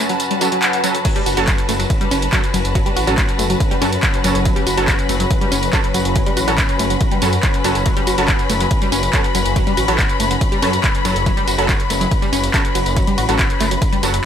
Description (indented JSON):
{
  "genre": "driving peak-time techno",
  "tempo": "141 BPM",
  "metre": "4/4",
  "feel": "straight",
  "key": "F# minor",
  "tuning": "A4 = 440 Hz",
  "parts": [
    { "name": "wide unison pluck", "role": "riff", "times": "0.0-14.2 s", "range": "F#3 to F#4", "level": "-23 LUFS", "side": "equal", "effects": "overdrive, sidechain pumping, tape echo" },
    { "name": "deep dark ambient pad", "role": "drone", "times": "0.0-14.3 s", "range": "F#3 to C#4", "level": "-25 LUFS", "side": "equal", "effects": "chorus, built-in reverb, sidechain pumping" },
    { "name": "bright studio string section", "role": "texture", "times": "0.0-14.3 s", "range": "F#4 to B5", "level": "-22 LUFS", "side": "left 4 dB", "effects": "sidechain pumping" },
    { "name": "punchy analog drum machine", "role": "drums", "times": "0.1-14.2 s", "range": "crash cymbal, handclaps, hi-hat, ride cymbal, tambourine", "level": "-22 LUFS", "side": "equal", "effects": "none" },
    { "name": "swell", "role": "sound effects", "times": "0.4-1.1 s", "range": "none", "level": "-24 LUFS", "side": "equal", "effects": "none" },
    { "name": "rave stab", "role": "stabs", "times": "0.4-14.1 s", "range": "F#3 to A4", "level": "-24 LUFS", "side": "right 2 dB", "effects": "chorus, built-in reverb, sidechain pumping, ping-pong delay" },
    { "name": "electronic kick drum", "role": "drums", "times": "1.1-13.9 s", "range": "none", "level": "-18 LUFS", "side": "equal", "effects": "none" },
    { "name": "detuned saw bass", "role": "bass", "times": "1.3-14.2 s", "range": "F#1 to F#2", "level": "-22 LUFS", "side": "equal", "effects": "sidechain pumping" }
  ],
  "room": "light reverb",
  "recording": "none",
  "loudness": "-14 LUFS",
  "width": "side -9 dB against mid",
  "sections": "0.0-14.3 A section",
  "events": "break 0.0-1.1; swell 0.4-1.1",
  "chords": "0.0 F#m",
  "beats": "0.20 0.63 | 1.05 1.48 1.90 2.33 | 2.75 3.18 3.60 4.03 | 4.46 4.88 5.31 5.73 | 6.16 6.58 7.01 7.43 | 7.86 8.29 8.71 9.14 | 9.56 9.99 10.41 10.84 | 11.26 11.69 12.12 12.54 | 12.97 13.39 13.82 14.24"
}